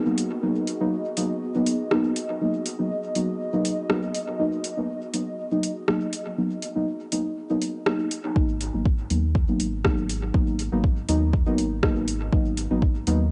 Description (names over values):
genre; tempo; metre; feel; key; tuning
dub techno; 121 BPM; 4/4; straight; G# minor; A4 = 440 Hz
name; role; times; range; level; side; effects
airy breathy pad; sustained chords; 0.0-8.3 s; B3 to D#5; -35 LUFS; equal; chorus, sidechain pumping, cassette tape
deep mellow chord stab; stabs; 0.0-13.2 s; F#3 to D#4; -28 LUFS; equal; chorus, phaser, sidechain pumping, cassette tape, dub echo
deep house drum kit; drums; 0.2-13.2 s; hi-hat, rim click; -31 LUFS; equal; overdrive, cassette tape, dub echo
warm sub bass; bass; 8.4-13.3 s; G#1 to D#2; -30 LUFS; equal; sidechain pumping
electronic kick drum; drums; 8.4-12.9 s; none; -25 LUFS; equal; overdrive, cassette tape
room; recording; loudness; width
moderate spring reverb, RT60 2.7 s; home recording on cassette, nothing above 10.7 kHz; -25 LUFS; mono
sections
0.0-8.4 A section; 8.4-13.3 B section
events
none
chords
0.0 G#m9